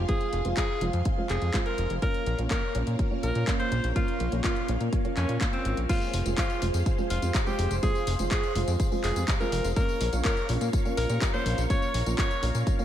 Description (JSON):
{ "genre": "italo disco", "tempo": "124 BPM", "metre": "4/4", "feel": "straight", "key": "F minor", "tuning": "A4 = 440 Hz", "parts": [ { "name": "string machine, full ensemble", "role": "sustained chords", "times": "0.0-12.8 s", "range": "Bb3 to Db6", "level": "-35 LUFS", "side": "equal", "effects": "phaser, ensemble chorus" }, { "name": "dark baby grand piano", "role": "stabs", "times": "0.0-12.8 s", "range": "Bb2 to G4", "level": "-34 LUFS", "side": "right 4 dB", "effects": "none" }, { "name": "fat analog bass", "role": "bass", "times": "0.0-12.6 s", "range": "F1 to Bb2", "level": "-28 LUFS", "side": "equal", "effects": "none" }, { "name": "bright alto saxophone", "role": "melody", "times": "0.1-12.5 s", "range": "C4 to Db5", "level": "-32 LUFS", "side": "equal", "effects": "tape echo" }, { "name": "electronic kick drum", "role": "drums", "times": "0.1-12.8 s", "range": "none", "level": "-28 LUFS", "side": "equal", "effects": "none" }, { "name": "house drum kit", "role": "drums", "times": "0.1-12.8 s", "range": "crash cymbal, handclaps, hi-hat, tambourine", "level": "-35 LUFS", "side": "left 2 dB", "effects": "gated reverb" } ], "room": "light reverb", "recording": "none", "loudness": "-24 LUFS", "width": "side -11 dB against mid", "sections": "0.0-5.9 A section; 5.9-12.8 B section", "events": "none", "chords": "0.0 Fm; 2.0 Bbm; 5.9 Fm; 9.8 Bbm" }